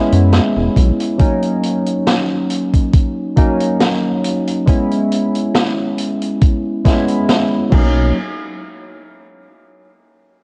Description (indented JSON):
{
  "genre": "vaporwave",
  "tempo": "69 BPM",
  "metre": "4/4",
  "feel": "swing 54% on 16ths",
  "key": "unclear",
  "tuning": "A4 = 439 Hz",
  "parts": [
    { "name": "barky tine electric piano", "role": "accompaniment", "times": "0.0-8.2 s", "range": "F#3 to E4", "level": "-19 LUFS", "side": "equal", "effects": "analog chorus, vintage 12-bit sampler grit, tape echo" },
    { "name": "chorused synth bass", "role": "bass", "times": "0.1-0.9, 7.7-8.1 s", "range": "E1 to F#2", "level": "-15 LUFS", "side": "equal", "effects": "none" },
    { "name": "street-band drum kit", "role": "drums", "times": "0.1-7.9 s", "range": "crash cymbal, hi-hat, snare drum", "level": "-23 LUFS", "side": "equal", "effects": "vintage 12-bit sampler grit" },
    { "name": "electronic kick drum", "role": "drums", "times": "0.8-7.9 s", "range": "none", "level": "-15 LUFS", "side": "equal", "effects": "overdrive, vintage 12-bit sampler grit" }
  ],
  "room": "light reverb, studio ambience",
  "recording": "dark, warm production, cassette tape",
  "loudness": "-15 LUFS",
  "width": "mono",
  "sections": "0.0-8.2 A section; 8.2-10.4 B section",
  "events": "none",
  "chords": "0.0 F#7sus4; 1.2 F#6; 4.7 E6/G#; 7.7 Bmaj9; 8.2 N.C."
}